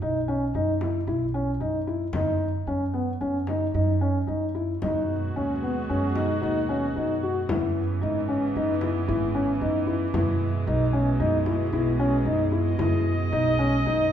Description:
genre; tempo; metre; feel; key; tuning
contemporary instrumental, chamber music in an uneven meter; 113 BPM; 5/4; straight; unclear; A4 = 443 Hz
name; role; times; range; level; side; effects
felt-muted upright piano; arpeggios; 0.0-14.0 s; B3 to F#4; -25 LUFS; left 2 dB; none
upright bass; bass; 0.0-14.1 s; G#1 to F#2; -27 LUFS; right 2 dB; none
frame drum; percussion; 0.8-13.7 s; none; -34 LUFS; left 2 dB; none
warm studio string section; sustained chords; 4.8-14.1 s; B2 to D#5; -30 LUFS; right 1 dB; none
room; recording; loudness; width
wet recital hall reverb, RT60 1.6 s; heard from further back in the room; -23 LUFS; side -9 dB against mid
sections
0.0-14.1 A section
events
none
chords
0.0 E5; 2.1 B/F# (rootless); 4.8 G#m7; 7.5 C#m7; 10.1 Emaj7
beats
0.02 0.55 1.08 1.61 | 2.14 2.67 3.21 3.74 4.28 | 4.82 5.36 5.89 6.43 6.96 | 7.49 8.02 8.55 9.08 9.61 | 10.14 10.67 11.20 11.73 12.26 | 12.79 13.33 13.86

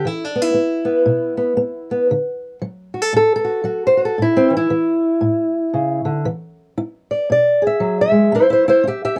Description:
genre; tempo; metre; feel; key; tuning
acoustic country blues, solo or duo; 116 BPM; 4/4; swing 60% on 8ths; unclear; A4 = 440 Hz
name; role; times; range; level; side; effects
fingerpicked old ladder-braced acoustic guitar; solo; 0.0-9.2 s; A2 to E5; -18 LUFS; equal; none
room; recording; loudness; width
light reverb; dark, warm production; -17 LUFS; mono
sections
0.0-8.3 A section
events
none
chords
0.0 E5; 2.1 D; 4.2 A; 6.3 E7; 8.3 A7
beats
| 0.03 0.55 1.07 1.59 | 2.11 2.63 3.15 3.67 | 4.18 4.70 5.22 5.74 | 6.26 6.78 7.30 7.81 | 8.33 8.85

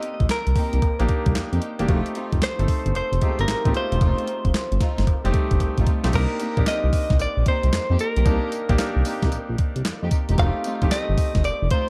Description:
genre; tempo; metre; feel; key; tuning
R&B, new jack swing; 113 BPM; 4/4; swing 66% on 16ths; C dorian; A4 = 439 Hz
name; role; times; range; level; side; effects
direct-recorded clean electric guitar; melody; 0.0-11.9 s; Bb4 to F5; -29 LUFS; equal; delay
clear baby grand piano; accompaniment; 0.0-11.9 s; G3 to A5; -32 LUFS; equal; none
crisp 8-bit digital drum machine; drums; 0.0-11.9 s; crash cymbal, handclaps, hi-hat, kick drum, snare drum, tambourine; -25 LUFS; equal; none
smooth synth bass; bass; 0.2-11.7 s; E1 to F2; -24 LUFS; equal; none
cowbell; percussion; 0.3-11.6 s; none; -44 LUFS; equal; none
warm studio string section; stabs; 0.6-11.9 s; A3 to G4; -35 LUFS; equal; none
room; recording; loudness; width
little or no reverb; dark, warm production; -22 LUFS; mono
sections
0.0-6.1 A section; 6.1-11.9 B section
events
drum fill 5.6-6.1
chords
0.0 Cm7; 1.9 F7; 6.1 Cm7; 10.4 F7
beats
0.29 0.82 1.35 | 1.89 2.42 2.95 3.48 | 4.01 4.54 5.07 5.60 | 6.13 6.66 7.20 7.73 | 8.26 8.79 9.32 9.85 | 10.38 10.91 11.44

